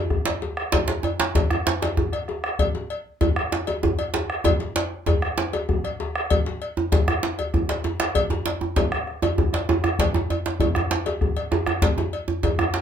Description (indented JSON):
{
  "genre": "west african traditional, West African drum ensemble",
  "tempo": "130 BPM (dotted quarters)",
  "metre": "12/8",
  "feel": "straight",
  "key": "none",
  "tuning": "none",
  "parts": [
    { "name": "bombo", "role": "percussion", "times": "0.1-12.8 s", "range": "none", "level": "-25 LUFS", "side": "left 1 dB", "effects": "none" },
    { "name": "djembe", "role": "percussion", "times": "0.1-12.8 s", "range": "none", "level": "-28 LUFS", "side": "left 3 dB", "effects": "none" },
    { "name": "cowbell", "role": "percussion", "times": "0.3-12.6 s", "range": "none", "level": "-28 LUFS", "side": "left 3 dB", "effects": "none" },
    { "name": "djembe", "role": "percussion", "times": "0.3-12.8 s", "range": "none", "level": "-24 LUFS", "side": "right 3 dB", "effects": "none" }
  ],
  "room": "wet small room ambience, RT60 0.5 s",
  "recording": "minimal, uncompressed stereo recording",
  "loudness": "-21 LUFS",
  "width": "side -8 dB against mid",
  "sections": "0.7-12.8 A section",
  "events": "drum fill 0.0-0.7, 7.4-8.2",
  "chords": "none"
}